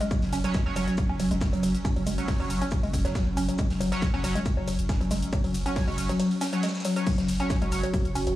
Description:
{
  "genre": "driving peak-time techno",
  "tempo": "138 BPM",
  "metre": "4/4",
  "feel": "straight",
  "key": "unclear",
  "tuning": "A4 = 441 Hz",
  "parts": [
    { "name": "woody wave-folded pluck", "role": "riff", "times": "0.0-8.4 s", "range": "F#3 to C#4", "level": "-29 LUFS", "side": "left 1 dB", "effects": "chorus, overdrive, sidechain pumping, tape echo" },
    { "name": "swarming drone", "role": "drone", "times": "0.0-8.4 s", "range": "F#3 to C#4", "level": "-35 LUFS", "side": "equal", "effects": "built-in reverb, sidechain pumping" },
    { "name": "techno drum kit", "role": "drums", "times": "0.0-8.3 s", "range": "crash cymbal, hi-hat, ride cymbal, shaker", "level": "-40 LUFS", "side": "left 1 dB", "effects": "overdrive, sidechain pumping on hats, studio ambience, sidechain pumping on cymbals, sidechain pumping on perc" },
    { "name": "big rock drum kit", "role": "drums", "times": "0.1-8.3 s", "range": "hi-hat, shaker, snare drum", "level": "-43 LUFS", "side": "equal", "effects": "high-pass filter on hats, studio ambience, high-pass filter on snare, high-pass filter on perc, high-pass filter on room" },
    { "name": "electronic kick drum", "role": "drums", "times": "0.1-8.0 s", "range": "none", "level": "-28 LUFS", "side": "equal", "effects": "overdrive, studio ambience" },
    { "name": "saturated sub bass", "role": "bass", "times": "0.2-8.4 s", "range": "F#1", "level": "-31 LUFS", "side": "equal", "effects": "tube saturation, sidechain pumping, low-pass filter" },
    { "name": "sync-sweep polysynth", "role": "stabs", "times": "0.4-7.9 s", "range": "F#3 to C#5", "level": "-34 LUFS", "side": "right 3 dB", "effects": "chorus, phaser, sidechain pumping, tape echo" },
    { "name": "granular cloud pad", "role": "texture", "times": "7.6-8.4 s", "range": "F#4 to F#5", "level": "-33 LUFS", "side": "right 3 dB", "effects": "built-in reverb, sidechain pumping" }
  ],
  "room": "light reverb",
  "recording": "dry, gritty hardware recording, small room reverb",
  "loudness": "-24 LUFS",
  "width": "side -15 dB against mid",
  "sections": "0.0-7.1 A section; 7.1-8.4 A section",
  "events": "drop 0.0-7.1, 7.1-8.4; kick drops out 6.2-7.1",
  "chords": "0.0 F#5",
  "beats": "| 0.11 0.54 0.98 1.41 | 1.85 2.28 2.72 3.15 | 3.59 4.02 4.46 4.89 | 5.33 5.76 6.20 6.63 | 7.07 7.50 7.94"
}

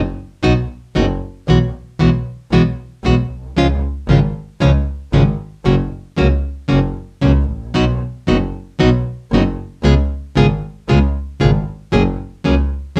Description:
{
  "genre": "tango",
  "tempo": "115 BPM",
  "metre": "4/4",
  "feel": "rubato",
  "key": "B major",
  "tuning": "A4 = 439 Hz",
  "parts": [
    { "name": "clear double bass", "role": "bass", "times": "0.0-12.7 s", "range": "F#1 to C#2", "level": "-20 LUFS", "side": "equal", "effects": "none" },
    { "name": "nylon-string guitar", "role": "accompaniment", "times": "0.4-13.0 s", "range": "B2 to G#4", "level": "-16 LUFS", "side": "equal", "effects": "none" }
  ],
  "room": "moderate studio reverb, RT60 0.6 s",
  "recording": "band playing live in one room",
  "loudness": "-17 LUFS",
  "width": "mono",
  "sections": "0.0-13.0 A section",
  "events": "none",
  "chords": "0.0 B; 1.5 Eadd9/B; 3.6 C#; 5.7 F#; 7.8 B; 9.8 C#7; 11.9 F#add9",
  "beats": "0.44 0.96 | 1.48 2.01 2.53 3.05 | 3.57 4.09 4.61 5.13 | 5.66 6.18 6.70 7.23 | 7.75 8.28 8.80 9.32 | 9.85 10.37 10.89 11.41 | 11.94 12.46 12.98"
}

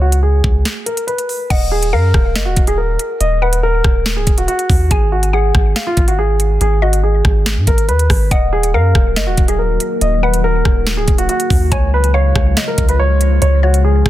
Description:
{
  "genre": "hip hop, drill",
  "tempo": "141 BPM",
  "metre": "4/4",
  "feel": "half-time",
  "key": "Eb minor",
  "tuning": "A4 = 438 Hz",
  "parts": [
    { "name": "dark concert grand piano", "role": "melody", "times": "0.0-14.1 s", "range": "F4 to Eb5", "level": "-18 LUFS", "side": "equal", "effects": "ping-pong delay" },
    { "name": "long sustained 808-style bass", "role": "bass", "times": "0.0-14.1 s", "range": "Db1 to Ab2", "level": "-14 LUFS", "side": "equal", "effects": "none" },
    { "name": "drill drum kit", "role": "drums", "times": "0.1-14.1 s", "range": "crash cymbal, hi-hat, kick drum, rim click, snare drum", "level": "-15 LUFS", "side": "equal", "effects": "none" },
    { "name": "mallet-like synth pluck", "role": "second line", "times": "1.5-14.1 s", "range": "Db5 to Ab5", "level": "-25 LUFS", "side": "left 4 dB", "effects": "chorus, ping-pong delay" },
    { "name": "deep dark ambient pad", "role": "sustained chords", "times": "8.7-14.1 s", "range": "Db3 to Gb4", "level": "-23 LUFS", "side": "left 2 dB", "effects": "chorus, built-in reverb" }
  ],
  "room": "digital ambience",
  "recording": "dense, heavily limited modern master",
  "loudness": "-12 LUFS",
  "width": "side -14 dB against mid",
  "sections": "0.0-1.5 A section; 1.5-14.1 B section",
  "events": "break 0.7-1.5",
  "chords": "0.0 Db5; 1.5 Ebm; 4.9 Ab7(no3); 8.3 Ebm; 11.7 Db",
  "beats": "0.23 0.65 1.08 | 1.50 1.93 2.35 2.78 | 3.21 3.63 4.06 4.48 | 4.91 5.33 5.76 6.18 | 6.61 7.04 7.46 7.89 | 8.31 8.74 9.16 9.59 | 10.02 10.44 10.87 11.29 | 11.72 12.14 12.57 12.99 | 13.42 13.85"
}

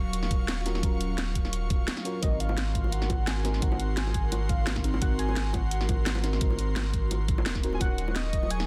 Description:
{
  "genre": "liquid drum and bass",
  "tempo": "172 BPM",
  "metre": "4/4",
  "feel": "swing 54% on 16ths",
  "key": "unclear",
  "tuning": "A4 = 441 Hz",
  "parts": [
    { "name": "mellow FM electric piano", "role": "accompaniment", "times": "0.0-8.7 s", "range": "C4 to Bb4", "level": "-39 LUFS", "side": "equal", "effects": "chorus, phaser, dub echo" },
    { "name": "airy breathy pad", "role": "sustained chords", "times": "0.0-8.7 s", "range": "Gb3 to Db6", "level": "-40 LUFS", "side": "equal", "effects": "chorus, sidechain pumping" },
    { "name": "warm sub bass", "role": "bass", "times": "0.0-8.7 s", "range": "Eb1 to Ab1", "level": "-32 LUFS", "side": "equal", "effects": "none" },
    { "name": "drum and bass drum kit", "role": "drums", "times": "0.1-8.7 s", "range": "hi-hat, snare drum", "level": "-36 LUFS", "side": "equal", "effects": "none" },
    { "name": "electronic kick drum", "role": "drums", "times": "0.3-8.4 s", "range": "none", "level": "-31 LUFS", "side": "equal", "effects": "none" },
    { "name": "warm velvety synth lead", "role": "melody", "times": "2.2-8.7 s", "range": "Eb5 to Ab5", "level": "-39 LUFS", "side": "equal", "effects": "chorus, tremolo, digital delay" },
    { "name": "bongos", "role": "percussion", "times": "2.2-8.5 s", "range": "none", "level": "-41 LUFS", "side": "equal", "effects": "none" }
  ],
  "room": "little or no reverb",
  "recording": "dense, heavily limited modern master",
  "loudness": "-28 LUFS",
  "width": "mono",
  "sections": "0.0-8.7 A section",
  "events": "none",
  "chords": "0.0 Ebm9; 2.2 Ab9; 7.8 Ebm7",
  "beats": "0.13 0.48 | 0.83 1.18 1.53 1.88 | 2.23 2.58 2.92 3.27 | 3.62 3.97 4.32 4.67 | 5.02 5.37 5.71 6.06 | 6.41 6.76 7.11 7.46 | 7.81 8.16 8.51"
}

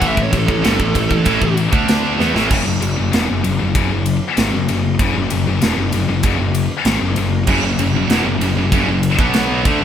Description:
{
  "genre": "heavy metal",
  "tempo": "96 BPM",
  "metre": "4/4",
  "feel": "straight",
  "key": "F# minor",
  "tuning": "A4 = 440 Hz",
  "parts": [
    { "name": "high-gain lead guitar", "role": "melody", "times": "0.0-1.6 s", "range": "A4 to E5", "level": "-22 LUFS", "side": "right 3 dB", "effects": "distortion" },
    { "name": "heavy high-gain guitar", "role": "riff", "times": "0.0-9.8 s", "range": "E2 to D4", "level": "-19 LUFS", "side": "left 6 dB", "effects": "distortion" },
    { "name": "heavy high-gain guitar", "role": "riff", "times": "0.0-2.5, 7.5-9.8 s", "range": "E2 to D4", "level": "-20 LUFS", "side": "right 8 dB", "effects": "distortion" },
    { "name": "fuzz picked electric bass", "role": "bass", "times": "0.0-9.8 s", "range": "E1 to E2", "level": "-20 LUFS", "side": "equal", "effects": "overdrive" },
    { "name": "tight metal drum kit", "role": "drums", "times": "0.0-9.8 s", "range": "crash cymbal, kick drum, ride cymbal, snare drum", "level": "-19 LUFS", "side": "right 1 dB", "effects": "none" }
  ],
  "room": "light reverb",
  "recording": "band playing live in one room",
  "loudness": "-14 LUFS",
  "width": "side -9 dB against mid",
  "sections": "0.0-2.5 A section; 2.5-9.8 B section",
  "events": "lead electric guitar solo 0.0-2.5; drum fill 2.2-2.5",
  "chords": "0.0 A5; 2.5 F#5",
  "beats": "| 0.02 0.64 1.26 1.89 | 2.51 3.13 3.75 4.37 | 5.00 5.62 6.24 6.86 | 7.48 8.10 8.73 9.35"
}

